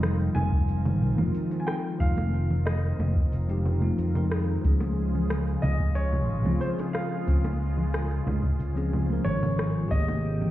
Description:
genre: sunset chillout.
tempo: 91 BPM.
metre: 4/4.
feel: straight.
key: F minor.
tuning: A4 = 440 Hz.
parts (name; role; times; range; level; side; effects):
clear concert grand piano; melody; 0.0-10.5 s; C5 to Ab5; -36 LUFS; right 1 dB; tape echo.
bell-like tine electric piano; accompaniment; 0.0-10.5 s; C3 to Bb4; -31 LUFS; left 1 dB; auto-pan, digital delay.
lush unison pad; sustained chords; 0.0-10.5 s; C3 to G5; -36 LUFS; equal; chorus, phaser.
fretless electric bass; bass; 0.0-10.5 s; F1 to F2; -26 LUFS; equal; none.
smooth R&B drum kit; drums; 0.0-10.5 s; cabasa, congas, hi-hat, rim click; -33 LUFS; right 1 dB; overdrive.
congas and bongos; percussion; 0.4-10.5 s; none; -33 LUFS; equal; none.
electronic kick drum; drums; 0.5-10.1 s; none; -25 LUFS; equal; none.
room: light reverb, digital ambience.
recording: heard muffled through a wall, stone room reverb, EQ.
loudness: -24 LUFS.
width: side -14 dB against mid.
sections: 0.0-10.5 A section.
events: none.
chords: 0.0 Fm9; 4.6 Dbmaj7; 9.9 Abmaj9.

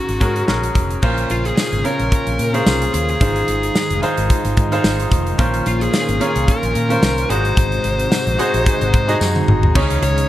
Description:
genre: 1980s-style pop.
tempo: 110 BPM.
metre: 4/4.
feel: swing 55% on 16ths.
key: unclear.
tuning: A4 = 438 Hz.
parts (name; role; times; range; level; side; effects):
fuzz lead guitar; melody; 0.0-10.3 s; F4 to Db5; -22 LUFS; left 1 dB; distortion, digital delay.
bright baby grand piano; accompaniment; 0.0-10.3 s; Ab2 to Eb5; -20 LUFS; equal; none.
vintage muted fingered electric bass; bass; 0.1-10.2 s; F1 to Bb2; -21 LUFS; equal; none.
modern studio drum kit; drums; 0.1-10.3 s; crash cymbal, hi-hat, kick drum, snare drum, toms; -19 LUFS; equal; none.
sweeping resonant pad; sustained chords; 1.0-10.3 s; C3 to Ab4; -26 LUFS; left 1 dB; chorus.
tambourine; percussion; 1.6-9.3 s; none; -31 LUFS; left 6 dB; none.
room: light reverb, studio reverb.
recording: lossy compression artefacts.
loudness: -14 LUFS.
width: side -14 dB against mid.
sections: 0.0-1.0 A section; 1.0-9.8 B section.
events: drum fill 9.2-9.8.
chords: 0.0 Ab9sus4; 1.0 Bbmadd9; 3.2 Fm7; 5.4 Bbmadd9; 7.3 Ab7; 9.8 Dbsus2.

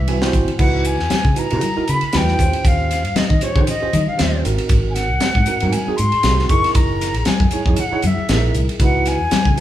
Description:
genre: electric jazz fusion.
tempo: 117 BPM.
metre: 4/4.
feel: swing 56% on 16ths.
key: C# dorian.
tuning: A4 = 440 Hz.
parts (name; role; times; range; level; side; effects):
jazz flute; melody; 0.0-9.6 s; C#5 to C#6; -22 LUFS; left 2 dB; none.
fingered electric bass; bass; 0.0-9.6 s; F#1 to D#3; -20 LUFS; equal; none.
bell-like tine electric piano; accompaniment; 0.1-9.6 s; C4 to Ab5; -23 LUFS; right 4 dB; none.
tight funk drum kit; drums; 0.1-9.6 s; crash cymbal, hi-hat, kick drum, ride cymbal, snare drum; -19 LUFS; equal; none.
congas; percussion; 0.1-9.5 s; none; -25 LUFS; left 3 dB; none.
room: moderate large studio reverb, RT60 1.1 s.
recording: band playing live in one room.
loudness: -15 LUFS.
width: side -12 dB against mid.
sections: 0.6-9.6 A section.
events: tine electric piano fill 0.0-0.6; drum fill 0.2-0.6.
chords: 0.0 Ab7alt; 0.6 C#m11; 2.4 D#13; 4.4 G#7; 6.5 F#13; 8.8 C#m11.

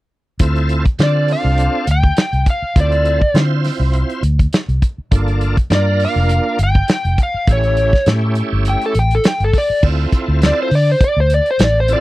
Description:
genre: straight-eighth soul blues.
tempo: 102 BPM.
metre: 4/4.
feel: swing 55% on 16ths.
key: D minor.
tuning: A4 = 440 Hz.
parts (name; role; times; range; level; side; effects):
bright tonewheel organ; accompaniment; 0.4-12.0 s; A3 to C5; -21 LUFS; right 3 dB; slow rotary speaker, chorus vibrato.
vintage muted fingered electric bass; bass; 0.4-11.9 s; F1 to D3; -15 LUFS; equal; none.
warm soul drum kit; drums; 0.4-12.0 s; crash cymbal, hi-hat, kick drum, snare drum; -15 LUFS; equal; none.
overdriven slide guitar; melody; 1.0-12.0 s; A4 to G5; -17 LUFS; left 1 dB; none.
room: little or no reverb.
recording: dry, close 1970s-style studio recording.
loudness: -13 LUFS.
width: side -18 dB against mid.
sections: 0.4-9.8 A section; 9.8-12.0 B section.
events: none.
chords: 0.4 Dm7; 5.1 Gm7; 7.5 A7; 9.8 Dm7.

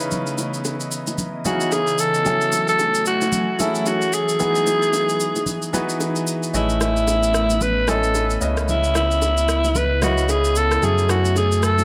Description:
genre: amapiano.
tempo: 112 BPM.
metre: 4/4.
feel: swing 58% on 16ths.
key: C# minor.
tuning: A4 = 440 Hz.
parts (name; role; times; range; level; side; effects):
clear grand piano; accompaniment; 0.0-11.8 s; C#3 to G#5; -29 LUFS; equal; none.
glassy FM pad; sustained chords; 0.0-11.8 s; C#3 to G#5; -30 LUFS; equal; ensemble chorus, built-in reverb.
electronic shaker and rim click; drums; 0.0-11.8 s; none; -30 LUFS; equal; none.
congas and bongos; percussion; 0.1-11.8 s; none; -32 LUFS; equal; none.
growling alto saxophone; melody; 1.5-11.8 s; E4 to B4; -22 LUFS; equal; digital delay.
sub bass with octave; bass; 6.5-11.8 s; A1 to F#2; -24 LUFS; equal; none.
room: light reverb.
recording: none.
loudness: -20 LUFS.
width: mono.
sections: 0.0-11.8 A section.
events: none.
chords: 0.0 C#m9; 2.3 F#m9; 4.4 Emaj7; 6.5 Amaj9#11; 8.4 C#m9; 10.8 F#m9.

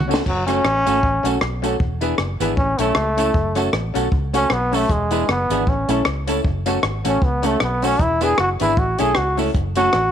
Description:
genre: ska.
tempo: 155 BPM.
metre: 4/4.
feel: swing 57% on 8ths.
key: F# minor.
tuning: A4 = 439 Hz.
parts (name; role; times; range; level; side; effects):
vintage muted fingered electric bass; bass; 0.0-10.1 s; E1 to C#2; -24 LUFS; equal; none.
compact cocktail drum kit; drums; 0.0-10.0 s; crash cymbal, hi-hat, kick drum, rim click, snare drum, toms; -23 LUFS; equal; none.
semi-hollow electric guitar; accompaniment; 0.1-9.9 s; E3 to A4; -26 LUFS; right 12 dB; tube saturation.
clear upright piano; stabs; 0.1-9.9 s; C#4 to C#5; -26 LUFS; left 12 dB; none.
tambourine; percussion; 0.1-9.8 s; none; -36 LUFS; right 12 dB; tape echo.
bright trombone; melody; 0.3-10.1 s; F#3 to G#4; -20 LUFS; equal; none.
room: light reverb.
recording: 1960s-style stereo with parts hard left and right.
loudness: -17 LUFS.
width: side -9 dB against mid.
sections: 0.3-10.1 A section.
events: drum fill 0.0; trombone solo 0.3-10.1.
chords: 0.3 F#m; 1.8 E7; 2.6 A; 3.4 F#m; 4.9 E7; 5.7 A; 6.4 F#m; 8.0 E7; 8.8 A; 9.5 F#m.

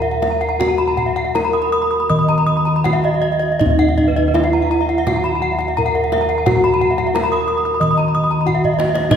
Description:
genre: Balinese gamelan.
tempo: 80-94 BPM.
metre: 4/4.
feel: straight.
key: Eb pelog.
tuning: A4 = 440 Hz.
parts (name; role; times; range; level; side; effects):
gamelan-type bronze metallophone; melody; 0.0-9.2 s; Eb4 to Eb5; -20 LUFS; right 1 dB; none.
gamelan-type bronze metallophone; arpeggios; 0.0-9.2 s; Eb5 to Eb6; -20 LUFS; left 2 dB; slapback echo.
gamelan-type bronze metallophone; arpeggios; 0.0-9.1 s; Cb5 to Eb6; -24 LUFS; right 4 dB; none.
gamelan-type bossed gongs; bass; 0.0-9.2 s; Eb2 to Gb4; -19 LUFS; left 1 dB; none.
kendang; percussion; 0.0-9.2 s; none; -25 LUFS; right 1 dB; none.
room: wet concert hall reverb, RT60 2.3 s.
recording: heard from further back in the room.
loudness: -14 LUFS.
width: side -8 dB against mid.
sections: 0.0-9.1 A section.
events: drum fill 8.5-9.1.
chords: none.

